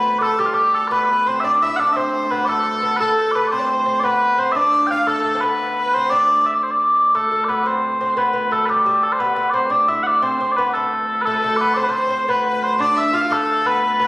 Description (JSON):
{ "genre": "medieval dance", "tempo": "116 BPM (dotted quarters)", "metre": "6/8", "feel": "straight", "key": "D dorian", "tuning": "A4 = 440 Hz", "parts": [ { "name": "mellow small bagpipes", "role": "melody", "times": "0.0-14.1 s", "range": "F4 to G5", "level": "-16 LUFS", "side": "equal", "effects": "none" }, { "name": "lute", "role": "second line", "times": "0.0-14.1 s", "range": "G3 to F4", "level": "-25 LUFS", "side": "right 1 dB", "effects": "none" }, { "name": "rich fiddle", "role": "second line", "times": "0.0-6.5, 11.3-14.1 s", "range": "G4 to F5", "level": "-28 LUFS", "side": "left 1 dB", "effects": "none" }, { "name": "hand-pumped harmonium", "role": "drone", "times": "0.0-14.1 s", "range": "D2", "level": "-32 LUFS", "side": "right 3 dB", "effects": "none" } ], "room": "wet scoring stage reverb, RT60 1.8 s", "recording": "recorded on a phone in the room, studio reverb, compression", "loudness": "-15 LUFS", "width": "side -20 dB against mid", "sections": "0.0-7.1 A section; 7.1-14.1 A section", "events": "none", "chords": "none", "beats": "0.39 | 0.92 1.44 | 1.96 2.48 | 3.00 3.52 | 4.04 4.56 | 5.08 5.59 | 6.11 6.63 | 7.15 7.66 | 8.18 8.69 | 9.21 9.72 | 10.24 10.75 | 11.27 11.78 | 12.29 12.80 | 13.31 13.83" }